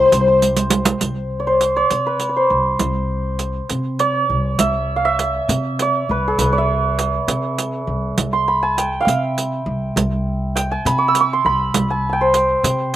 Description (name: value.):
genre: Persian modal ensemble.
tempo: 67 BPM (dotted quarters).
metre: 6/8.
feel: straight.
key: C dastgah chahargah.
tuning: A4 = 440 Hz.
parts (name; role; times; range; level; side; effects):
santur; melody; 0.0-13.0 s; E4 to E6; -18 LUFS; right 1 dB; slapback echo.
upright bass; bass; 0.1-13.0 s; C2 to C3; -22 LUFS; equal; none.
riq; percussion; 0.1-13.0 s; none; -21 LUFS; right 4 dB; none.
room: little or no reverb.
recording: recorded outdoors, with no room sound.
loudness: -16 LUFS.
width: side -12 dB against mid.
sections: 0.0-1.0 A section; 1.0-13.0 B section.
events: drum fill 0.4-1.0.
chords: none.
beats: 0.12 | 1.02 1.91 | 2.81 3.70 | 4.60 5.50 | 6.39 7.29 | 8.18 9.07 | 9.97 10.86 | 11.75 12.64.